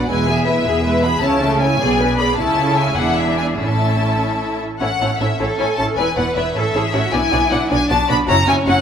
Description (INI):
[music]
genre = quick classical-period movement for string orchestra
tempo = 104 BPM (dotted quarters)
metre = 6/8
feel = rubato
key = A major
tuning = A4 = 439 Hz
[part]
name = clear studio violin section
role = melody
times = 0.0-8.8 s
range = E5 to B5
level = -20 LUFS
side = left 3 dB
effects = none
[part]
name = rich studio violin section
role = second line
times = 0.0-8.7 s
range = F#4 to E5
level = -23 LUFS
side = left 3 dB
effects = none
[part]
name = clear studio viola section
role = accompaniment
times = 0.0-8.7 s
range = G#3 to B4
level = -22 LUFS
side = right 1 dB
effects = none
[part]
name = clear studio cello section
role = bass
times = 0.1-8.8 s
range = E2 to B4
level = -22 LUFS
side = right 2 dB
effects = none
[part]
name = warm studio double bass section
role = bass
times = 0.1-8.7 s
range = E1 to C#2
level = -22 LUFS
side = right 2 dB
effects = none
[sound]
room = moderate scoring stage reverb, RT60 2.0 s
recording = none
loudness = -15 LUFS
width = side -8 dB against mid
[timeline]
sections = 0.0-4.8 A section; 4.8-8.8 B section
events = none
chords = 0.1 E; 1.2 A/C#; 1.8 G#dim/B; 2.4 A/C#; 3.0 E7; 3.6 A; 6.0 E5; 6.6 A; 7.1 Bm; 8.3 F#5